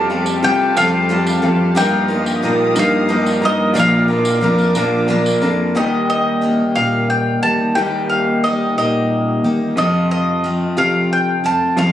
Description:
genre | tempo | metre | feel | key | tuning
folk rock and heartland rock | 60 BPM (dotted quarters) | 6/8 | straight | unclear | A4 = 443 Hz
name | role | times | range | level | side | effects
bowl-back mandolin | melody | 0.0-11.9 s | Eb5 to A5 | -18 LUFS | equal | analog delay
bright upright piano | accompaniment | 0.0-5.7 s | F4 to F5 | -27 LUFS | right 2 dB | none
picked steel-string acoustic guitar | accompaniment | 0.0-11.9 s | F2 to G4 | -22 LUFS | left 1 dB | none
warm chamber string section | sustained chords | 0.0-5.8 s | G4 to Eb6 | -27 LUFS | left 2 dB | none
electric guitar through a small old amp | riff | 0.0-11.9 s | G2 to Bb4 | -18 LUFS | equal | none
overdriven tine electric piano | bass | 0.0-11.9 s | Eb2 to C3 | -21 LUFS | equal | phaser
tambourine | percussion | 0.3-5.5 s | none | -29 LUFS | right 2 dB | none
room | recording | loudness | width
light reverb, studio ambience | recorded on a phone in the room, club reverb | -14 LUFS | side -11 dB against mid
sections
0.0-5.8 A section; 5.8-11.9 B section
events
none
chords
0.0 Fadd9; 1.8 Ebadd9/G; 3.8 Bb; 5.8 Eb; 9.8 F

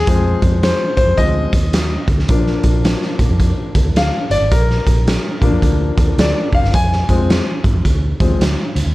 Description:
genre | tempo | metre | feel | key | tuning
uptempo 1960s-style soul | 108 BPM | 4/4 | swing 62% on 8ths | F dorian | A4 = 440 Hz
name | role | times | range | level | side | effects
clear concert grand piano | accompaniment | 0.0-8.4 s | F3 to Ab5 | -19 LUFS | left 2 dB | none
vintage muted fingered electric bass | bass | 0.0-8.9 s | F1 to Bb2 | -18 LUFS | equal | none
raw garage drum kit | drums | 0.1-8.9 s | hi-hat, kick drum, snare drum | -16 LUFS | equal | none
room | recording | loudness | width
small room ambience | dark, warm production | -13 LUFS | side -18 dB against mid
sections
0.0-8.9 A section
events
grand piano solo 0.0-8.9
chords
0.0 Fm; 2.3 Bb; 6.7 Fm

